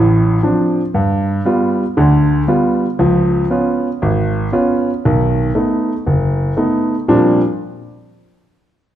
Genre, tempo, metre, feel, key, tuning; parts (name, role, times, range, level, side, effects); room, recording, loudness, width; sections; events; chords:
jazz; 117 BPM; 4/4; swing 69% on 8ths; A4 = 442 Hz
clear grand piano; accompaniment; 0.0-7.4 s; F#1 to F4; -13 LUFS; equal
wet large studio reverb, RT60 1.3 s; dark, warm production; -13 LUFS; side -11 dB against mid
0.0-7.1 A section; 7.1-9.0 B section
0.0 Dm7; 0.9 G7; 3.0 Db7; 5.0 B7; 7.1 Bb69